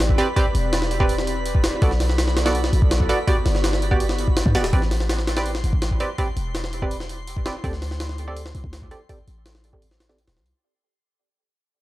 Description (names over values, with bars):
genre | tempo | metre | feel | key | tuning
drum and bass, jungle | 165 BPM | 4/4 | straight | A dorian | A4 = 440 Hz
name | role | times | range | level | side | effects
airy breathy pad | sustained chords | 0.0-4.7 s | B3 to D5 | -30 LUFS | right 1 dB | chorus
warm 808-style bass | bass | 0.0-10.5 s | D1 to G2 | -23 LUFS | equal | none
jungle sampler-style drum kit | drums | 0.0-10.5 s | hi-hat, kick drum, snare drum | -23 LUFS | equal | none
drifting glass-harmonics texture | texture | 0.0-10.6 s | B5 to C6 | -37 LUFS | right 2 dB | chorus, built-in reverb
filtered dub chord stab | stabs | 0.2-10.2 s | B3 to D5 | -26 LUFS | right 2 dB | chorus, dub echo
room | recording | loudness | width
digital ambience | dry, gritty hardware recording | -19 LUFS | side -16 dB against mid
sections
0.0-4.7 A section; 4.7-10.5 B section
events
drop 0.0-4.7; fade-out 4.7-10.5; filter sweep on 808-style bass 4.7-10.5; filter sweep on synth stab 4.7-10.5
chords
0.0 Am11 (rootless); 1.8 Bm7; 3.3 Gmaj7; 4.7 Am11; 7.6 D7sus4